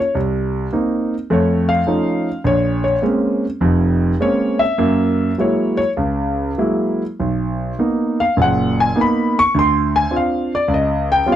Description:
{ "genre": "solo jazz", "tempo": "103 BPM", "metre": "4/4", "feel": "swing 67% on 8ths, rubato", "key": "unclear", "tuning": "A4 = 439 Hz", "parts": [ { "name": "warm concert grand piano", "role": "solo", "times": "0.0-11.4 s", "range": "F1 to Db6", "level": "-15 LUFS", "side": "equal", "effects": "none" } ], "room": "light reverb", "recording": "dry, close 1970s-style studio recording", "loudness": "-15 LUFS", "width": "side -11 dB against mid", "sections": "0.0-11.4 A section", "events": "grand piano solo 0.0-11.4", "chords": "0.1 Cm7; 1.3 F7b13; 2.5 Bbm9; 4.8 Gb9; 7.2 Bmaj7; 9.5 Dm7b5; 10.7 Db7#11", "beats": "| 0.15 0.73 1.30 1.88 | 2.45 3.03 3.61 4.19 | 4.78 5.38 5.97 6.58 | 7.19 7.79 8.38 8.96 | 9.54 10.12 10.70 11.27" }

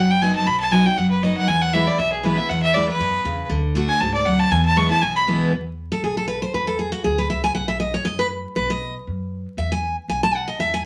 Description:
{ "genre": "bluegrass", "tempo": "237 BPM", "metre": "4/4", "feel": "swing 54% on 8ths", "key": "E mixolydian", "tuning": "A4 = 440 Hz", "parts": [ { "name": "clear fiddle", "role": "melody", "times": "0.0-5.2 s", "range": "G#4 to C#6", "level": "-22 LUFS", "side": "equal", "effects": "none" }, { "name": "picked steel-string acoustic guitar", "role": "accompaniment", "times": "0.0-10.8 s", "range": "E2 to A5", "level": "-23 LUFS", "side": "equal", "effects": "none" }, { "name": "upright bass", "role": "bass", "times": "0.0-10.9 s", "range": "F#1 to F#2", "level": "-31 LUFS", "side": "equal", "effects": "none" } ], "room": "wet studio reverb, RT60 0.6 s", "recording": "vinyl crackle", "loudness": "-21 LUFS", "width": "mono", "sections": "0.0-5.5 A section; 5.5-10.9 A section", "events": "fiddle solo 0.0-5.5; steel-string acoustic guitar solo 5.5-10.9", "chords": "0.0 B; 1.5 E; 3.5 D; 4.5 E; 5.5 E5; 7.6 B; 9.6 E", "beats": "0.22 | 0.47 0.72 0.97 1.23 | 1.48 1.73 1.99 2.24 | 2.49 2.75 3.00 3.25 | 3.50 3.76 4.01 4.26 | 4.51 4.77 5.02 5.27 | 5.53 5.78 6.03 6.29 | 6.54 6.79 7.05 7.30 | 7.55 7.81 8.06 8.31 | 8.57 8.82 9.07 9.32 | 9.58 9.83 10.09 10.34 | 10.59 10.85" }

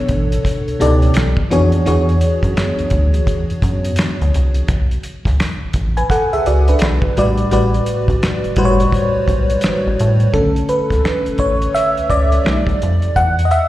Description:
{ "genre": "R&B, neo-soul", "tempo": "85 BPM", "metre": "4/4", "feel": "swing 62% on 16ths", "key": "unclear", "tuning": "A4 = 442 Hz", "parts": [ { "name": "FM electric piano with soft pad layer", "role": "accompaniment", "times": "0.0-13.7 s", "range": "A2 to G#5", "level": "-16 LUFS", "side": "equal", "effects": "chorus, slapback echo" }, { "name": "rubbery square bass", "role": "bass", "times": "0.0-13.5 s", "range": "G1 to A2", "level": "-16 LUFS", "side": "equal", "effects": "none" }, { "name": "cloth-damped thuddy drum kit", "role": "drums", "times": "0.1-13.7 s", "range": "finger snaps, hi-hat, kick drum, snare drum", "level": "-20 LUFS", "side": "equal", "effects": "none" } ], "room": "studio ambience", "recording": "live gig heard through the venue's PA, recital hall reverb", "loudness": "-13 LUFS", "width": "side -15 dB against mid", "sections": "0.0-10.3 A section; 10.3-13.7 B section", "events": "FM electric piano solo 10.3-13.7", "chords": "0.0 Bm9; 1.2 Bm; 1.9 E13; 4.7 Bsus2; 6.8 Bm7; 7.5 A13sus4; 10.3 Bm9; 12.5 B7alt; 13.2 Esus2", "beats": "0.45 1.16 | 1.86 2.57 3.28 3.98 | 4.69 5.39 6.10 6.81 | 7.51 8.22 8.92 9.63 | 10.34 11.04 11.75 12.45 | 13.16" }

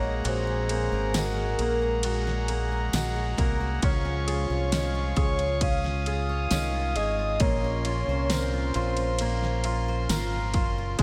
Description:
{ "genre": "pop ballad", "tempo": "67 BPM", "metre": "4/4", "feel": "straight", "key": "unclear", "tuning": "A4 = 440 Hz", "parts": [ { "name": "soft octave-layered synth lead", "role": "melody", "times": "0.0-9.7 s", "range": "Bb4 to F5", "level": "-34 LUFS", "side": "equal", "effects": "chorus, phaser, slapback echo, tape echo" }, { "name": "mellow French horn section", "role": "second line", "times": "0.0-11.0 s", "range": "Bb2 to Ab4", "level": "-40 LUFS", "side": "equal", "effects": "slapback echo" }, { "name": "bright concert grand piano", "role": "accompaniment", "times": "0.0-11.0 s", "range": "Ab3 to Bb4", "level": "-37 LUFS", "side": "equal", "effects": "slapback echo" }, { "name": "pipe organ, principal", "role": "sustained chords", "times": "0.0-11.0 s", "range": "Db4 to Eb6", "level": "-37 LUFS", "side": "equal", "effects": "none" }, { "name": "picked steel-string acoustic guitar", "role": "arpeggios", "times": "0.0-11.0 s", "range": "Bb2 to Db5", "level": "-40 LUFS", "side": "equal", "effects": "tape echo" }, { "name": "deep dub fingered electric bass", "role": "bass", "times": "0.0-11.0 s", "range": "Gb1 to Db2", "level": "-31 LUFS", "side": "equal", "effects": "none" }, { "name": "pop drum kit", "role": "drums", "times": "0.2-11.0 s", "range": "kick drum, ride cymbal, snare drum", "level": "-33 LUFS", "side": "equal", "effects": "none" }, { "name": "tambourine", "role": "percussion", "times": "1.1-10.3 s", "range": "none", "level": "-43 LUFS", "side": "equal", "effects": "none" } ], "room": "moderate lush hall reverb, RT60 2.7 s", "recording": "big arena sound", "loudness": "-27 LUFS", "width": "mono", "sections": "0.0-11.0 A section", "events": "none", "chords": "0.0 Gbadd9; 3.8 Db; 7.4 Bbmadd9", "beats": "| 0.24 1.14 2.04 2.93 | 3.83 4.72 5.62 6.51 | 7.41 8.30 9.20 10.10 | 10.99" }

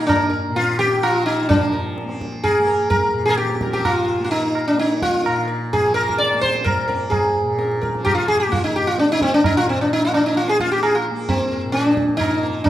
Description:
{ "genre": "indian classical, Hindustani", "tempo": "129 BPM", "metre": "3/4", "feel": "straight", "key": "Bb raga khamaj", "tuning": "A4 = 439 Hz", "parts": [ { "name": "sitar", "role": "melody", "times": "0.0-12.7 s", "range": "C4 to D5", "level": "-18 LUFS", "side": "equal", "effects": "none" }, { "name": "tanpura", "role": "drone", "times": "0.0-12.7 s", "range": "Bb2 to Bb3", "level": "-28 LUFS", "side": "left 1 dB", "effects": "none" }, { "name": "tabla", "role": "percussion", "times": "0.1-12.7 s", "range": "none", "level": "-24 LUFS", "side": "right 2 dB", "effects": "none" } ], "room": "wet recital hall reverb, RT60 1.3 s", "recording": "minimal, uncompressed stereo recording", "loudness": "-16 LUFS", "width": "side -12 dB against mid", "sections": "0.0-1.5 A section; 1.5-12.7 B section", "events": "none", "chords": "none", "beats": "| 0.09 0.56 1.03 | 1.50 1.98 2.44 | 2.92 3.38 3.85 | 4.32 4.79 5.26 | 5.72 6.19 6.66 | 7.12 7.59 8.05 | 8.52 8.98 9.44 | 9.90 10.37 10.83 | 11.29 11.75 12.21 | 12.67" }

